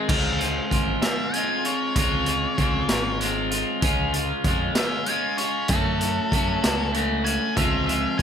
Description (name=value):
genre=indie rock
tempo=64 BPM (dotted quarters)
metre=6/8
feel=straight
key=Db major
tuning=A4 = 444 Hz
part: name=electric guitar at the edge of break-up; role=riff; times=0.0-8.2 s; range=F3 to Gb4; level=-24 LUFS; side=left 1 dB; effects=double-tracked left and right
part: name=fuzz picked electric bass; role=bass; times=0.1-8.2 s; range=Ab1 to Gb2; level=-29 LUFS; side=equal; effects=overdrive
part: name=raw garage drum kit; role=drums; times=0.1-8.2 s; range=crash cymbal, hi-hat, kick drum, snare drum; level=-25 LUFS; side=equal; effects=none
part: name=octave-fuzz lead guitar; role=melody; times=1.0-8.2 s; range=A4 to Ab5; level=-28 LUFS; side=left 1 dB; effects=distortion, slapback echo
room=little or no reverb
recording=none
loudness=-21 LUFS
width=side -8 dB against mid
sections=0.1-8.2 A section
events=lead electric guitar solo 0.1-8.2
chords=0.1 Dbmaj7; 3.8 Db; 5.7 Gbm; 7.6 Dbmaj7